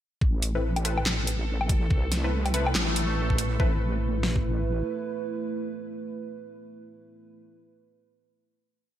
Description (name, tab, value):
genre	deep dubstep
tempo	142 BPM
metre	4/4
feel	swing 60% on 16ths, half-time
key	A minor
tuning	A4 = 444 Hz
part	dark analog pad	sustained chords	1.2-7.4 s	A3 to B4	-34 LUFS	right 4 dB	chorus
part	wobble bass	bass	0.2-4.8 s	A1 to C2	-27 LUFS	equal	chorus, tube saturation
part	dubstep drum kit	drums	0.2-4.4 s	kick drum, snare drum	-24 LUFS	equal	none
part	backwards swelling texture	texture	1.0-3.6 s	A3 to A4	-38 LUFS	right 1 dB	built-in reverb
part	dubstep drum kit	drums	0.4-3.5 s	handclaps, hi-hat, snare drum, woodblock	-29 LUFS	left 1 dB	none
part	filtered dub chord stab	stabs	0.6-7.4 s	C4 to B4	-34 LUFS	left 1 dB	analog chorus, dub echo
room	light reverb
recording	bright 1980s-style digital production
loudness	-24 LUFS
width	side -11 dB against mid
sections	0.2-3.6 build; 3.6-7.0 final chord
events	build-up 0.2-3.6; filter sweep on analog synth pad 0.2-3.6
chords	0.2 Amadd9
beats	| 0.22 0.64 1.06 1.48 | 1.91 2.33 2.75 3.17 | 3.60 4.02 4.44 4.87 | 5.29 5.71 6.13 6.55